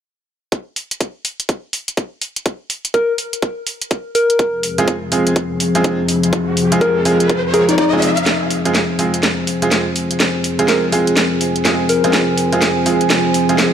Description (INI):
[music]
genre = bass house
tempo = 124 BPM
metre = 4/4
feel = swing 62% on 16ths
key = F minor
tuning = A4 = 440 Hz
[part]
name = electronic kick drum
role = drums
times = 0.5-7.9 s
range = none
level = -19 LUFS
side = equal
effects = high-pass filter on kick, high-pass filter on room
[part]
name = garage drum kit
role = drums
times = 0.5-13.7 s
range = hi-hat, snare drum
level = -18 LUFS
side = right 1 dB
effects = high-pass filter on hats, high-pass filter on snare, high-pass filter on room
[part]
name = soft struck synth lead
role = melody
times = 2.9-12.6 s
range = Eb4 to Bb4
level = -19 LUFS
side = left 2 dB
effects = chorus, digital delay
[part]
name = dark analog pad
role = sustained chords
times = 4.4-13.7 s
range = F3 to Ab4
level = -18 LUFS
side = left 2 dB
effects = wide subtle chorus, sidechain pumping
[part]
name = riser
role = sound effects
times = 5.5-8.3 s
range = none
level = -23 LUFS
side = equal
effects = none
[part]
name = bright grand piano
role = stabs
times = 4.8-13.7 s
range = Ab3 to Bb4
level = -19 LUFS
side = right 3 dB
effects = sidechain pumping, digital delay
[part]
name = warbly tape-like pad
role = texture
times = 9.4-13.7 s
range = F4 to Ab5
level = -23 LUFS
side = right 5 dB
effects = chorus, built-in reverb, sidechain pumping
[sound]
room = moderate lush hall reverb, RT60 2.1 s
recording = none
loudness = -14 LUFS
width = side -8 dB against mid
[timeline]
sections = 0.5-8.3 A section; 8.3-13.7 B section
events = riser 5.5-8.3; build-up 8.3-13.7; drum fill 8.3-13.7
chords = 0.5 Fm